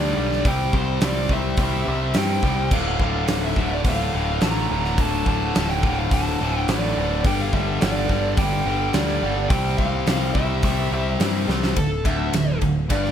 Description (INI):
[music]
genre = heavy metal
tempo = 106 BPM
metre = 4/4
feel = straight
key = D minor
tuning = A4 = 440 Hz
[part]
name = dark smooth lead guitar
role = melody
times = 0.0-13.1 s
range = A4 to Bb5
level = -27 LUFS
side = right 2 dB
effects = overdrive, tape echo
[part]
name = tight distorted guitar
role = riff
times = 0.0-13.1 s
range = D2 to C4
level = -24 LUFS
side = left 1 dB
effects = distortion
[part]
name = growling picked electric bass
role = bass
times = 0.0-13.1 s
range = D1 to G2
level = -25 LUFS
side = equal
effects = overdrive
[part]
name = big rock drum kit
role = drums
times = 0.3-13.1 s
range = crash cymbal, hi-hat, kick drum, ride cymbal, snare drum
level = -24 LUFS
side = equal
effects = none
[sound]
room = little or no reverb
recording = none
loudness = -19 LUFS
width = side -9 dB against mid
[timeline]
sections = 0.0-11.8 A section; 11.8-13.1 B section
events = drum fill 11.5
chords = 0.5 C; 2.7 Dm; 7.2 G5; 9.5 C; 11.8 D5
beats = | 0.45 1.02 1.59 2.15 | 2.72 3.29 3.85 4.42 | 4.98 5.55 6.12 6.68 | 7.25 7.81 8.38 8.94 | 9.51 10.07 10.64 11.20 | 11.77 12.34 12.90